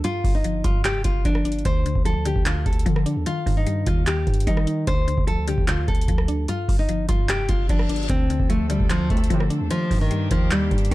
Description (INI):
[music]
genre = hip hop, trap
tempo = 149 BPM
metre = 4/4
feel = half-time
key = D phrygian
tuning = A4 = 440 Hz
[part]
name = nylon-string guitar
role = melody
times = 0.0-10.9 s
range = Eb3 to C5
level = -26 LUFS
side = equal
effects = tape echo
[part]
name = mallet-like synth pluck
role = accompaniment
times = 0.0-10.9 s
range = G2 to Eb4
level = -28 LUFS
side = left 1 dB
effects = chorus
[part]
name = long sustained 808-style bass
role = bass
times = 0.0-10.9 s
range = F1 to Eb3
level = -25 LUFS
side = equal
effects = none
[part]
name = booming analog drum machine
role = drums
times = 0.0-10.9 s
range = handclaps, hi-hat, kick drum, rim click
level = -22 LUFS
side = equal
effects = overdrive
[part]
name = reverse cymbal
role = sound effects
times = 7.5-8.1 s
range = none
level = -35 LUFS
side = left 7 dB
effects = none
[part]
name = warm studio string section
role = sustained chords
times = 8.1-10.9 s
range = Eb3 to A4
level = -34 LUFS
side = equal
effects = none
[part]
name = mellow brass ensemble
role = stabs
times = 9.1-9.4 s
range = F2 to C3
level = -34 LUFS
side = right 3 dB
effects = tape echo
[sound]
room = little or no reverb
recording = dark, warm production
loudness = -19 LUFS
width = side -17 dB against mid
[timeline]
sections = 0.0-8.1 A section; 8.1-10.9 B section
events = reverse cymbal 7.5-8.1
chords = 0.0 G5; 1.7 Dm7; 3.3 Eb; 4.9 Dm7; 6.5 G5; 8.1 Dm7; 9.7 Ebmaj7